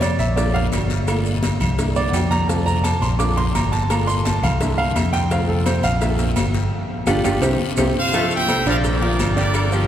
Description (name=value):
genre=latin, salsa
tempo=170 BPM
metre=4/4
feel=straight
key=F major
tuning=A4 = 438 Hz
part: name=clear grand piano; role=accompaniment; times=0.0-9.9 s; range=D3 to D6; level=-22 LUFS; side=right 2 dB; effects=none
part: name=fingered electric bass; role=bass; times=0.0-9.9 s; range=G1 to F2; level=-20 LUFS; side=equal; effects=none
part: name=agogo bells and timbales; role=percussion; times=0.0-9.7 s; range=none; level=-31 LUFS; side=right 3 dB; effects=none
part: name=claves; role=percussion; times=0.0-9.7 s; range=none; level=-38 LUFS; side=left 7 dB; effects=none
part: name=congas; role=percussion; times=0.0-9.9 s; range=none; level=-28 LUFS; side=left 3 dB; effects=none
part: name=cowbell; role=percussion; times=0.0-9.7 s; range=none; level=-30 LUFS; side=left 4 dB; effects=none
part: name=guiro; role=percussion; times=0.0-9.9 s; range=none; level=-34 LUFS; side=left 7 dB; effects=none
part: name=maracas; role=percussion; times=0.0-9.9 s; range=none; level=-37 LUFS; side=right 6 dB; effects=none
part: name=bright trumpet section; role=melody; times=8.0-9.9 s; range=Bb4 to G5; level=-22 LUFS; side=right 1 dB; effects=none
part: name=bright saxophone section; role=second line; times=8.1-9.9 s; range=F3 to A3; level=-27 LUFS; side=left 2 dB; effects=none
room=wet cathedral reverb, RT60 7.3 s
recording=recorded in a church or concert hall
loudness=-17 LUFS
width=side -10 dB against mid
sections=0.0-8.1 A section; 8.1-9.9 B section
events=grand piano solo 0.0-8.1; band accent 6.7-8.1; drum fill 7.1-8.1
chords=0.4 Bb; 1.1 Gm7; 1.8 C7; 2.5 F; 3.2 Bb; 3.9 Gm7; 4.6 C7; 5.3 F; 6.0 Bb; 6.7 G5; 7.4 C; 8.1 F; 8.8 Bb